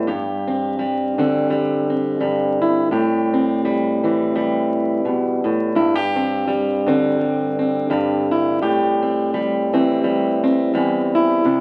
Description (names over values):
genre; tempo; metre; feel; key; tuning
folk, solo fingerstyle acoustic guitar; 84 BPM; 4/4; swing 56% on 8ths; A minor; A4 = 445 Hz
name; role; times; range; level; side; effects
fingerpicked plugged-in steel-string acoustic guitar; solo; 0.0-11.6 s; E2 to G4; -19 LUFS; equal; none
room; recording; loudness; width
wet club reverb, RT60 0.8 s; very old 78 rpm record, vinyl crackle; -19 LUFS; mono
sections
0.0-11.4 A section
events
none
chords
0.1 Gsus4; 2.9 Am7; 5.8 Gsus4; 8.6 Am7